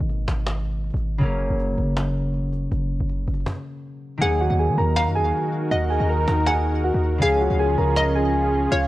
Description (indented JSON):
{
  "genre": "hip hop, trap",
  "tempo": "160 BPM",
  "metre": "4/4",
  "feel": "half-time",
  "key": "Eb minor",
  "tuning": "A4 = 441 Hz",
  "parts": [
    { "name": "concert harp", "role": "accompaniment", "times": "0.0-8.9 s", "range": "Cb3 to Eb4", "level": "-27 LUFS", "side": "left 1 dB", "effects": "low-pass filter" },
    { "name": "hard-hitting 808-style bass", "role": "bass", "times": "0.0-8.9 s", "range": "Gb1 to Eb3", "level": "-24 LUFS", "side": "equal", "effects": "none" },
    { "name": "cajon", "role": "drums", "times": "0.1-8.8 s", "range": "none", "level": "-32 LUFS", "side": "equal", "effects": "none" },
    { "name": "muted felt-like synth keys", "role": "melody", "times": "4.2-8.9 s", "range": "F4 to Bb5", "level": "-23 LUFS", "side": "right 1 dB", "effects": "chorus, low-pass filter" },
    { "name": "hollow square pluck", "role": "second line", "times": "4.2-8.9 s", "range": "Db5 to Gb5", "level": "-28 LUFS", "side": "left 2 dB", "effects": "chorus, tape echo" },
    { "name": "warm analog pad", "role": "sustained chords", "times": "4.2-8.9 s", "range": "Db3 to Bb4", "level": "-27 LUFS", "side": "right 1 dB", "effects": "chorus" }
  ],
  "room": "light reverb, studio ambience",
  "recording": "worn, warbling old tape, cassette tape, warbly pitch drift",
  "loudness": "-20 LUFS",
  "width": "side -16 dB against mid",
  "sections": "0.0-4.2 A section; 4.2-8.9 B section",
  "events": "break 0.0-4.2; stop 3.5-4.2",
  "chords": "0.0 Abmadd9; 1.2 Gb; 4.2 Ebm; 7.2 Db"
}